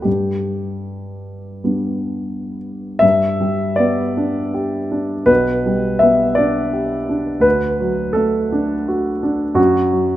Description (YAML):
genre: classical, romantic nocturne for solo piano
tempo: 37-58 BPM (dotted quarters)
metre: 6/8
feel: rubato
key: G major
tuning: A4 = 441 Hz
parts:
  - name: warm grand piano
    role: solo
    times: 0.0-10.2 s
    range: B1 to E5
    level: -16 LUFS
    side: equal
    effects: none
room: moderate recital hall reverb, RT60 1.8 s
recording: close, detailed microphones, faint mains hum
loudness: -15 LUFS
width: side -13 dB against mid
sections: 0.0-3.0 A section; 3.0-10.2 B section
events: none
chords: 0.1 G; 5.3 G/B; 7.5 D; 9.6 N.C.